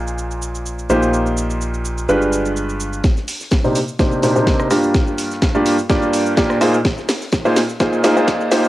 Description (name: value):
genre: piano house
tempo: 126 BPM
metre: 4/4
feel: swing 53% on 16ths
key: C minor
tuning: A4 = 440 Hz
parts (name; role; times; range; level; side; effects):
- bright upright piano; riff; 0.0-8.7 s; G2 to D5; -16 LUFS; equal; sidechain pumping, low-pass filter, cassette tape
- organ-like FM bass; bass; 0.0-3.0 s; G1 to Bb1; -24 LUFS; equal; sidechain pumping
- house drum kit; drums; 0.1-8.7 s; hi-hat, rim click, shaker, snare drum; -22 LUFS; equal; high-pass filter on perc, cassette tape, high-pass filter on snare, high-pass filter on hats, high-pass filter on room
- damped 70s drum kit; drums; 3.0-8.6 s; hi-hat, snare drum, tambourine; -37 LUFS; left 2 dB; none
- electronic kick drum; drums; 3.0-8.4 s; none; -18 LUFS; equal; cassette tape
room: light reverb, small room ambience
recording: home recording on cassette, high-pass filter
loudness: -15 LUFS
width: side -16 dB against mid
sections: 0.0-3.0 A section; 3.0-8.7 B section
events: build-up 3.0-8.7; drum fill 3.0-8.7; filter sweep on upright piano 3.0-8.7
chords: 0.0 Bb9sus4; 0.9 Eb69/Bb; 2.1 G7b9; 3.0 Cm9; 4.7 Gm7; 6.6 Bb9sus4